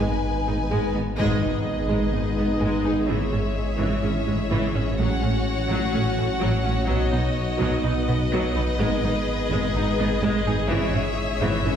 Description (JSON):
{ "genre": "cinematic, hybrid orchestral and electronic film score", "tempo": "126 BPM", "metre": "4/4", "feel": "straight", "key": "unclear", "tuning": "A4 = 440 Hz", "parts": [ { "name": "warm symphonic violin section", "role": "melody", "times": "0.0-0.9 s", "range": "G#5", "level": "-31 LUFS", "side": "left 6 dB", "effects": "none" }, { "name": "clear studio violin section", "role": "second line", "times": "0.0-11.8 s", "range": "B4 to F#5", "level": "-30 LUFS", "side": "left 4 dB", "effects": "none" }, { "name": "clear chamber viola section", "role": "accompaniment", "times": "0.0-11.8 s", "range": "E3 to G#4", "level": "-29 LUFS", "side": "right 1 dB", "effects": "none" }, { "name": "dark trombone section", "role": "sustained chords", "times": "0.0-0.9 s", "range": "D#3 to G#3", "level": "-38 LUFS", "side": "equal", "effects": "none" }, { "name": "mellow French horn section", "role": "sustained chords", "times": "0.0-11.8 s", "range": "B3 to F#4", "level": "-30 LUFS", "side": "equal", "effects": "none" }, { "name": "warbly tape-like pad", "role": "sustained chords", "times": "0.0-11.8 s", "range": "F#3 to D#5", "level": "-32 LUFS", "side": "right 1 dB", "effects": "chorus, built-in reverb, phaser" }, { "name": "analog pluck", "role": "arpeggios", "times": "0.0-11.8 s", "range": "C#3 to B4", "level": "-34 LUFS", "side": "right 2 dB", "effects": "none" }, { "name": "clear symphonic double bass section", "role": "bass", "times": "0.0-11.7 s", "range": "G#1 to B1", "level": "-29 LUFS", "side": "right 1 dB", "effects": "none" }, { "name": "detuned saw bass", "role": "bass", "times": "0.0-11.8 s", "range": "G#1 to B1", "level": "-28 LUFS", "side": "equal", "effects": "none" }, { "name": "warm symphonic cello section", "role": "bass", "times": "0.0-11.7 s", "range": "G#2 to B2", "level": "-29 LUFS", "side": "right 2 dB", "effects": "none" }, { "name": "impact", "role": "sound effects", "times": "1.2-3.1 s", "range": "none", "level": "-32 LUFS", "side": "equal", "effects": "none" } ], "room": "wet scoring stage reverb, RT60 1.4 s", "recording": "heard from further back in the room", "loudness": "-21 LUFS", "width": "side -8 dB against mid", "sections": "0.0-1.2 A section; 1.2-11.8 B section", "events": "band accent 1.2-1.7; impact 1.2-3.1", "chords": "0.0 G#m; 3.1 C#m/G#; 5.0 F#m/A; 6.9 B; 8.8 G#m; 10.7 C#m/G#" }